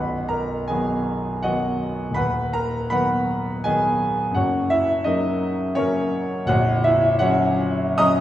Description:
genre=classical, romantic character piece for solo piano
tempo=72-86 BPM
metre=3/4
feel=rubato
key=B major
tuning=A4 = 439 Hz
part: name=clear concert grand piano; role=solo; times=0.0-8.2 s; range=A#0 to D#6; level=-19 LUFS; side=equal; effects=none
room=wet recital hall reverb, RT60 1.6 s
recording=heard from further back in the room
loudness=-19 LUFS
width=side -12 dB against mid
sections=0.0-8.2 A section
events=none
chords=0.0 B; 2.2 B/D#; 4.4 F#; 6.5 F#/A#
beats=0.70 1.45 | 2.17 2.92 3.65 | 4.37 5.06 5.77 | 6.48 7.20 7.99

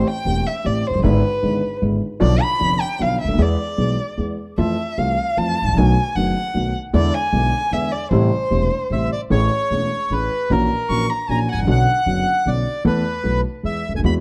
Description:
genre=tango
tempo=152 BPM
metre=3/4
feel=rubato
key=A minor, A major from 9.3 s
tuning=A4 = 440 Hz
part: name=dark violin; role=second line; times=0.0-11.8 s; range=B4 to C#6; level=-25 LUFS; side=equal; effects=none
part: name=dark concert grand piano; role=accompaniment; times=0.0-14.2 s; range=E1 to A4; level=-23 LUFS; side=equal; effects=none
part: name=upright bass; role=bass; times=0.0-14.2 s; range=E1 to F2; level=-24 LUFS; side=equal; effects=none
part: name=bandoneon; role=melody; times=8.9-14.1 s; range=A#4 to B5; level=-24 LUFS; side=equal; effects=none
room=light reverb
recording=dark, warm production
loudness=-19 LUFS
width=mono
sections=0.0-9.3 A section; 9.3-14.2 B section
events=violin solo 0.0-9.3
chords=0.0 Am7; 1.0 E7/G#; 2.2 Bdim; 3.4 E; 4.6 Fmaj7; 5.8 B7; 6.9 E7; 8.1 Am7; 9.3 Amaj7; 10.5 F#7/A#; 11.7 Bmadd9; 12.9 Esus4; 13.6 E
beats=0.26 0.65 | 1.04 1.43 1.82 | 2.21 2.60 3.00 | 3.39 3.78 4.18 | 4.58 4.98 5.38 | 5.77 6.16 6.55 | 6.94 7.33 7.72 | 8.11 8.51 8.91 | 9.31 9.71 10.11 | 10.51 10.90 11.29 | 11.68 12.07 12.46 | 12.85 13.24 13.64 | 14.04

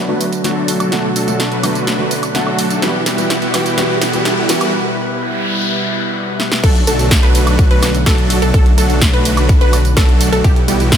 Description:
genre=EDM, festival progressive house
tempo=126 BPM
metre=4/4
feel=straight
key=unclear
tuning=A4 = 440 Hz
part: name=lush unison pad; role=sustained chords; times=0.0-11.0 s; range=B2 to F#5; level=-21 LUFS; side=equal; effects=chorus, sidechain pumping
part: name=supersaw chords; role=riff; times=0.0-11.0 s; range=F#3 to B4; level=-19 LUFS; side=equal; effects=sidechain pumping, low-pass filter, tape echo
part: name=riser and noise sweep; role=sound effects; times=2.1-6.6 s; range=none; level=-24 LUFS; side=equal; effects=none
part: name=dark baby grand piano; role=accompaniment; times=0.1-4.7 s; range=D3 to F#4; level=-21 LUFS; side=equal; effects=sidechain pumping, tape echo
part: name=big-room dance drum kit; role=drums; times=0.2-11.0 s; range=crash cymbal, hi-hat, snare drum, tambourine, woodblock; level=-19 LUFS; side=right 1 dB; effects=none
part: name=wide unison pluck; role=arpeggios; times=6.6-11.0 s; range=G3 to B4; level=-20 LUFS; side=right 1 dB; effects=sidechain pumping, tape echo
part: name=wide detuned saw bass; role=bass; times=6.6-11.0 s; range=B1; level=-17 LUFS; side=equal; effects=chorus, sidechain pumping
part: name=electronic kick drum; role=drums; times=6.6-11.0 s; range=none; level=-12 LUFS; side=equal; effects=none
room=light reverb, digital ambience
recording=none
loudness=-12 LUFS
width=side -8 dB against mid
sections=0.0-6.6 A section; 6.6-11.0 B section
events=build-up 0.0-6.6; drum fill 0.0-4.7, 6.4; filter sweep on supersaw synth 0.0-6.6; break 4.7-6.6; noise sweep 4.7-6.6; drop 6.6-11.0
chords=0.0 D/B; 2.8 Emadd9/B; 6.6 D/B; 10.4 Emadd9/B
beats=0.45 | 0.92 1.40 1.87 2.35 | 2.83 3.30 3.78 4.25 | 4.73 5.21 5.68 6.16 | 6.63 7.11 7.59 8.06 | 8.54 9.02 9.49 9.97 | 10.45 10.92

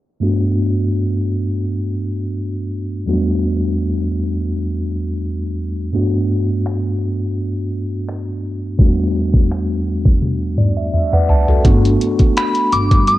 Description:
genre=contemporary R&B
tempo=84 BPM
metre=4/4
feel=swing 54% on 16ths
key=G major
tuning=A4 = 440 Hz
part: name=mellow tine electric piano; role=accompaniment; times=0.2-13.2 s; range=E2 to A5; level=-18 LUFS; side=equal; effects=medium stereo tremolo, cassette tape
part: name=smooth R&B drum kit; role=drums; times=6.7-13.2 s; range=finger snaps, hi-hat, kick drum, toms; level=-14 LUFS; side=equal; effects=cassette tape
part: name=upright bass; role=bass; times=11.7-13.2 s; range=G1 to G2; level=-17 LUFS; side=equal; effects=none
part: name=soft synth bell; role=melody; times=12.4-13.2 s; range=B5 to E6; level=-15 LUFS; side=equal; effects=chorus, cassette tape
room=little or no reverb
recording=home recording on cassette, low-pass filter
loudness=-15 LUFS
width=side -16 dB against mid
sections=0.2-11.6 A section; 11.6-13.2 B section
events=filter sweep 0.2-11.6; drum fill 10.2-11.6; tine electric piano fill 10.2-11.6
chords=0.2 Gmaj7; 3.1 Em11; 5.9 Gmaj7; 8.8 Em11; 11.6 Gmaj7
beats=| 0.22 0.93 1.65 2.36 | 3.08 3.79 4.50 5.22 | 5.93 6.65 7.36 8.08 | 8.79 9.50 10.22 10.93 | 11.65 12.36 13.08

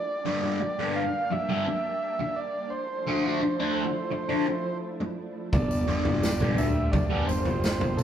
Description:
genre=psychedelic rock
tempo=85 BPM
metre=4/4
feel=straight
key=G dorian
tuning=A4 = 442 Hz
part: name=combo organ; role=melody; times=0.0-8.0 s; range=A4 to F5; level=-30 LUFS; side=right 2 dB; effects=none
part: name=soft string machine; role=sustained chords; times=0.0-8.0 s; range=F3 to G4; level=-36 LUFS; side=right 1 dB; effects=ensemble chorus
part: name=fuzz guitar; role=riff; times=0.2-7.8 s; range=G2 to D4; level=-28 LUFS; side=left 2 dB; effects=distortion, phaser
part: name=fuzz picked electric bass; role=bass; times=5.5-8.0 s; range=G1 to D2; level=-29 LUFS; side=equal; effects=overdrive
part: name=vintage drum kit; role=drums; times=5.5-8.0 s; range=kick drum, snare drum, toms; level=-26 LUFS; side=equal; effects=none
part: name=tambourine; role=percussion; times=5.5-8.0 s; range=none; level=-45 LUFS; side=left 5 dB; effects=none
room=wet large studio reverb, RT60 0.9 s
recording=band playing live in one room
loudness=-25 LUFS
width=side -9 dB against mid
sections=0.0-8.0 A section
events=none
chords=0.0 Gm; 2.7 Dmadd9; 5.5 Gm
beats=0.61 1.31 2.02 | 2.72 3.42 4.12 4.83 | 5.53 6.23 6.94 7.64

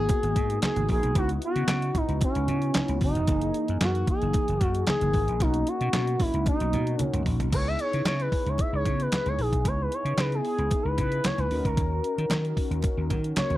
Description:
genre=early-eighties boogie funk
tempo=113 BPM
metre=4/4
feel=straight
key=C# dorian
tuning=A4 = 441 Hz
part: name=expressive portamento lead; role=melody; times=0.0-13.6 s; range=C#4 to E5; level=-29 LUFS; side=equal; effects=chorus
part: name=mellow synth brass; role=accompaniment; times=0.0-13.6 s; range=E3 to A#4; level=-33 LUFS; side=left 3 dB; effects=chorus
part: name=vintage slap bass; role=bass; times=0.0-13.6 s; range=E1 to D#3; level=-28 LUFS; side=equal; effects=none
part: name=detuned 8-bit digital drum machine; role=drums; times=0.1-13.6 s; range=crash cymbal, handclaps, hi-hat, kick drum, snare drum, toms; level=-28 LUFS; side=equal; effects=overdrive
part: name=congas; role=percussion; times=0.1-13.6 s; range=none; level=-34 LUFS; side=right 2 dB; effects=none
room=little or no reverb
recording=dry, close 1970s-style studio recording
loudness=-23 LUFS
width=side -15 dB against mid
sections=0.0-7.5 A section; 7.5-13.6 B section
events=drum fill 7.0-7.5; analog synth lead solo 7.5-13.6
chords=0.0 G#m9; 1.2 C#m11; 3.3 F#13; 5.4 Bmaj7; 7.5 C#m7; 11.5 D#m7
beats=0.09 0.62 | 1.15 1.69 2.22 2.75 | 3.28 3.81 4.34 4.87 | 5.40 5.93 6.46 7.00 | 7.53 8.06 8.59 9.12 | 9.65 10.18 10.71 11.24 | 11.77 12.30 12.84 13.37

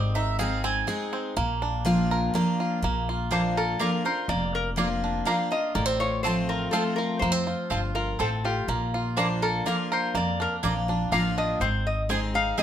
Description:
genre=bluegrass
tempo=123 BPM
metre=3/4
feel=straight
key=Bb major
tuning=A4 = 440 Hz
part: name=picked steel-string acoustic guitar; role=accompaniment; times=0.0-12.6 s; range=F2 to Ab4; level=-28 LUFS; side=left 1 dB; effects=none
part: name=bluegrass banjo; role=arpeggios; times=0.0-12.6 s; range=Bb3 to Bb4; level=-30 LUFS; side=right 3 dB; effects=none
part: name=mandolin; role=stabs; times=0.0-12.6 s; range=Bb3 to Bb5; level=-31 LUFS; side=right 4 dB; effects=none
part: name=upright bass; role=bass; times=0.0-12.5 s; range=F1 to F2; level=-31 LUFS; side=left 1 dB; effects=none
part: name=lap resonator guitar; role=melody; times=3.3-12.6 s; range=G4 to F5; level=-29 LUFS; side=left 3 dB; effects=none
room=light reverb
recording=none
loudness=-24 LUFS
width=side -10 dB against mid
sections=0.0-2.8 A section; 2.8-12.6 B section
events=mandolin solo 0.0-2.8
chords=0.0 Ab; 1.4 Bb; 5.8 F/A; 8.7 Bb; 11.6 Ab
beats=0.39 0.88 | 1.37 1.86 2.34 | 2.83 3.32 3.81 | 4.29 4.78 5.27 | 5.76 6.25 6.73 | 7.22 7.71 8.20 | 8.68 9.17 9.66 | 10.15 10.63 11.12 | 11.61 12.10 12.58

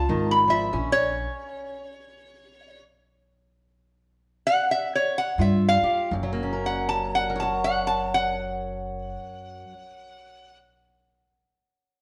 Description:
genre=acoustic country blues, solo or duo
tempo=81-94 BPM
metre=4/4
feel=swing 60% on 8ths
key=F# major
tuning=A4 = 440 Hz
part: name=lap resonator guitar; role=melody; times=0.0-10.6 s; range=C#5 to B5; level=-26 LUFS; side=equal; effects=none
part: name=fingerpicked old ladder-braced acoustic guitar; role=accompaniment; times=0.0-10.5 s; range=F#2 to F#5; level=-32 LUFS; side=equal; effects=none
part: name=upright bass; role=bass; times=0.0-1.2, 5.4-9.2 s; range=F#1 to G2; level=-31 LUFS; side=equal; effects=none
room=wet stone room reverb, RT60 1.3 s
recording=band playing live in one room, faint mains hum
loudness=-24 LUFS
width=mono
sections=0.0-6.1 A section; 6.1-9.1 B section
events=slowing down 0.7-6.1; stop 0.7-5.4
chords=0.0 C# (rootless); 0.7 F#; 5.4 Fsus2/G; 6.1 F#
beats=0.09 | 0.72 1.36 2.00 2.65 | 3.31 3.99 4.68 5.39 | 6.12 6.86 7.61 8.35

